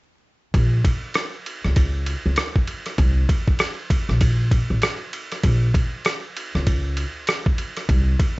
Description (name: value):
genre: hip hop, jazz-hop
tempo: 98 BPM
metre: 4/4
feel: swing 60% on 16ths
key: Bb minor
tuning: A4 = 440 Hz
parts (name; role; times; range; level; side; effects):
- upright bass; bass; 0.5-8.1 s; A1 to Db2; -20 LUFS; equal; none
- boom bap sampler-style drum kit; drums; 0.5-8.4 s; hi-hat, kick drum, ride cymbal, rim click; -21 LUFS; equal; none
room: little or no reverb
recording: vinyl crackle, nothing above 7.8 kHz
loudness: -19 LUFS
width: side -23 dB against mid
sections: 0.5-8.4 A section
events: none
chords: none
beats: | 0.54 1.15 1.76 2.37 | 2.99 3.60 4.21 4.82 | 5.43 6.05 6.66 7.27 | 7.88